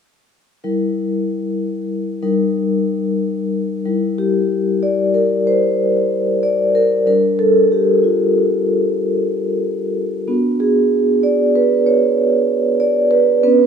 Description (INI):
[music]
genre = classical, contemporary piece for solo vibraphone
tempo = 94 BPM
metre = 5/4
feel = rubato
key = unclear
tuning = A4 = 437 Hz
[part]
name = vibraphone with soft mallets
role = solo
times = 0.6-13.7 s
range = G3 to D5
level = -14 LUFS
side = equal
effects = none
[sound]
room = moderate stone room reverb, RT60 1.4 s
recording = minimal, uncompressed stereo recording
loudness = -14 LUFS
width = side -7 dB against mid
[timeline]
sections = 0.6-3.8 A section; 3.8-13.7 B section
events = none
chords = 0.6 Gm6; 2.2 Eb/G; 3.8 Gm6; 7.1 Gm9; 10.3 Bm6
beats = | 0.64 1.28 1.91 2.53 3.18 | 3.85 4.50 5.14 5.79 6.43 | 7.08 7.73 8.37 9.01 9.65 | 10.29 10.92 11.55 12.18 12.80 | 13.43